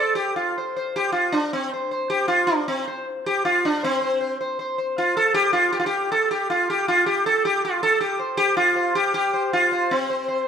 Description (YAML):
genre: indian classical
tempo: 158 BPM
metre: 4/4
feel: straight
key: C raga durga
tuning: A4 = 440 Hz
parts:
  - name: sitar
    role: solo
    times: 0.0-10.4 s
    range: C4 to C5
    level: -19 LUFS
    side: equal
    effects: none
room: moderate recital hall reverb, RT60 1.4 s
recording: minimal, uncompressed stereo recording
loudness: -19 LUFS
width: side -7 dB against mid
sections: 0.0-3.8 A section; 3.8-10.5 B section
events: none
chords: none